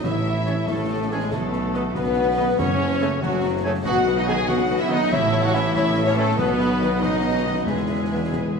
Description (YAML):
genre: cinematic, heroic adventure film score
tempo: 94 BPM (dotted quarters)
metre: 6/8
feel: straight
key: B mixolydian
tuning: A4 = 440 Hz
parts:
  - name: clear symphonic violin section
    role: melody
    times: 0.0-8.6 s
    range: F#4 to G#5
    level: -31 LUFS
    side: left 1 dB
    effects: none
  - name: clear symphonic violin section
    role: second line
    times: 0.0-8.6 s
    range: F#4 to G#5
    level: -32 LUFS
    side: left 3 dB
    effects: none
  - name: mellow hollow silver concert flute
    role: second line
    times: 0.0-8.5 s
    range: F#4 to G#5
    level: -32 LUFS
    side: left 2 dB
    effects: none
  - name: warm symphonic viola section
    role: accompaniment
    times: 0.0-8.6 s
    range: F#4 to A5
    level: -33 LUFS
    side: equal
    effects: none
  - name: mellow French horn section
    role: sustained chords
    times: 0.0-8.6 s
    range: F#3 to G#4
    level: -25 LUFS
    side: left 3 dB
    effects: none
  - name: concert harp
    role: arpeggios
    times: 0.0-8.6 s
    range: F#2 to B4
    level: -32 LUFS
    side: left 8 dB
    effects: none
  - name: mellow trumpet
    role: stabs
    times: 0.0-8.6 s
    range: F#3 to G#4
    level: -31 LUFS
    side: right 2 dB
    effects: none
  - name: rich symphonic cello section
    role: bass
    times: 0.0-8.6 s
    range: E2 to B2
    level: -30 LUFS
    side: right 2 dB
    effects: none
  - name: rich symphonic double bass section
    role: bass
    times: 0.0-8.6 s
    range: E1 to B1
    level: -29 LUFS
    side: right 3 dB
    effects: none
  - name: warm tuba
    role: bass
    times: 0.0-8.6 s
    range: E1 to B1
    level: -28 LUFS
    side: right 2 dB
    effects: none
  - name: concert snare drum, concert bass drum and clash cymbals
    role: drums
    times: 0.0-8.5 s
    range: none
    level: -32 LUFS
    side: equal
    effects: none
  - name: clear oboe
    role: second line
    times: 0.5-8.6 s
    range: C#5 to G#5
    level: -38 LUFS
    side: right 2 dB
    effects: none
  - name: mellow clarinet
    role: second line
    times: 0.5-8.6 s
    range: A4 to C#5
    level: -33 LUFS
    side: left 4 dB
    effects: none
  - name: clear trombone section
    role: sustained chords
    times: 0.5-8.2 s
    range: C#3 to C#4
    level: -33 LUFS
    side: right 3 dB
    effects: none
  - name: timpani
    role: percussion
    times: 2.6-7.0 s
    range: F#2 to B2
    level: -32 LUFS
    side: left 1 dB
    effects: none
room: wet scoring stage reverb, RT60 1.7 s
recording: small room ambience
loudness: -19 LUFS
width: side -5 dB against mid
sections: 0.0-8.6 A section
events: none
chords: 0.0 A; 1.3 B; 2.6 F#madd9; 3.9 B; 5.1 A; 6.4 B; 7.7 E